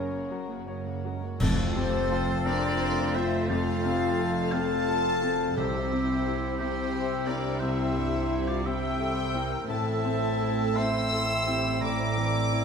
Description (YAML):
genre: cinematic, emotional film score for orchestra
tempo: 58 BPM (dotted quarters)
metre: 6/8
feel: rubato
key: F major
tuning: A4 = 441 Hz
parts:
  - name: warm studio violin section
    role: melody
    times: 0.0-12.6 s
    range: Gb4 to E6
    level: -33 LUFS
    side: left 5 dB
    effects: none
  - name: concert flute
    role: second line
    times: 0.0-12.6 s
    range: Db5 to A6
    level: -39 LUFS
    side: equal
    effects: none
  - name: dark studio violin section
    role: second line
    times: 0.0-12.6 s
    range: A3 to Bb4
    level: -38 LUFS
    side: left 3 dB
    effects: none
  - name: warm clarinet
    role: second line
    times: 0.0-12.6 s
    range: C4 to Db4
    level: -37 LUFS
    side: left 1 dB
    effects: none
  - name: bright grand piano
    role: accompaniment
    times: 0.0-12.6 s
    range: C2 to Db5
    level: -34 LUFS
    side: left 3 dB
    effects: none
  - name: dark symphonic viola section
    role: accompaniment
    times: 0.0-12.6 s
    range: Gb3 to C5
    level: -39 LUFS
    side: right 3 dB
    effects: none
  - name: mellow French horn section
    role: sustained chords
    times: 0.0-12.6 s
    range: Ab3 to E5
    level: -33 LUFS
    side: left 2 dB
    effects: none
  - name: concert harp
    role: arpeggios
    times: 0.0-12.6 s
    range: F2 to Bb5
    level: -37 LUFS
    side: left 5 dB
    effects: none
  - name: dark symphonic double bass section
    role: bass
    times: 0.0-12.6 s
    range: F1 to C2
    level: -34 LUFS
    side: right 4 dB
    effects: none
  - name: rich symphonic cello section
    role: bass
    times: 0.0-12.6 s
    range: F2 to Db3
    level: -36 LUFS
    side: right 4 dB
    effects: none
  - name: warm oboe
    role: second line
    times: 1.4-12.6 s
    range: G4 to C6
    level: -36 LUFS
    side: right 3 dB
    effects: none
  - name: clash cymbals and concert bass drum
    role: percussion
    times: 1.4-2.8 s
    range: none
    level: -33 LUFS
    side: right 1 dB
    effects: none
  - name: timpani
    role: percussion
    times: 1.4-6.6 s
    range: F2 to C3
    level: -33 LUFS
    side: equal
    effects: none
room: moderate scoring stage reverb, RT60 1.5 s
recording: none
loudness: -25 LUFS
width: side -6 dB against mid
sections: 0.0-1.4 A section; 1.4-12.6 B section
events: band accent 1.4-2.1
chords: 0.0 Gb; 1.4 F; 5.6 C; 9.7 Am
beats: 0.30 | 1.40 2.45 | 3.50 4.53 | 5.57 6.59 | 7.61 8.65 | 9.69 10.76 | 11.82